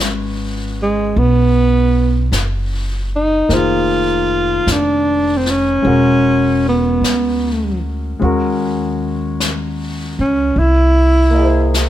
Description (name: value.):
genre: jazz ballad.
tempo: 51 BPM.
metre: 4/4.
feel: swing 68% on 8ths.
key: unclear.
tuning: A4 = 437 Hz.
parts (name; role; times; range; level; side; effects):
clear concert grand piano; accompaniment; 0.0-11.9 s; Eb3 to D#5; -21 LUFS; left 2 dB; none.
upright bass; bass; 0.0-11.9 s; E1 to Eb2; -18 LUFS; equal; none.
jazz brush drum kit; drums; 0.0-11.9 s; brushed snare drum, hi-hat, snare drum; -25 LUFS; left 3 dB; none.
breathy alto saxophone; melody; 0.8-11.7 s; Ab3 to F4; -15 LUFS; right 1 dB; none.
room: light reverb.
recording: none.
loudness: -13 LUFS.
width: side -12 dB against mid.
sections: 0.0-11.9 A section.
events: none.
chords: 0.0 Abm7; 3.5 Fm7; 5.8 E13; 8.2 Ebm7; 10.6 C7alt.